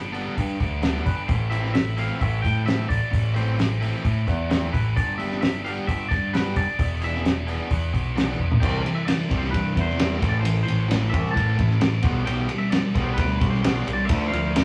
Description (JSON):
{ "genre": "indie rock", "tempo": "131 BPM", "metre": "4/4", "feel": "straight", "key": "A minor", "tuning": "A4 = 440 Hz", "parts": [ { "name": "twangy electric guitar", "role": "melody", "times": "0.0-14.6 s", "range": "B4 to A5", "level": "-33 LUFS", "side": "equal", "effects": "none" }, { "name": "scooped high-gain guitar", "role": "riff", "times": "0.0-14.6 s", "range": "G2 to E4", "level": "-35 LUFS", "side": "equal", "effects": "distortion" }, { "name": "growling picked electric bass", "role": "bass", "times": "0.0-14.6 s", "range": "E1 to A2", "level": "-28 LUFS", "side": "equal", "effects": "overdrive" }, { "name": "crunchy overdriven guitar", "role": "riff", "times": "0.1-14.6 s", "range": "A2 to G#4", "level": "-30 LUFS", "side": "equal", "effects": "none" }, { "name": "cloth-damped thuddy drum kit", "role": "drums", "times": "0.1-14.6 s", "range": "crash cymbal, hi-hat, kick drum, ride cymbal, snare drum, toms", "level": "-27 LUFS", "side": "equal", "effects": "none" } ], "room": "moderate studio reverb, RT60 0.5 s", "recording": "rough rehearsal-room recording, tube saturation, small room ambience", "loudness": "-23 LUFS", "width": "mono", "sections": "0.0-8.6 A section; 8.6-14.6 B section", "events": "drum fill 8.4", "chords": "0.0 G; 1.3 Am; 5.0 G; 6.8 E7; 8.6 C; 10.2 Am; 12.0 G6/B; 14.1 Dmadd9" }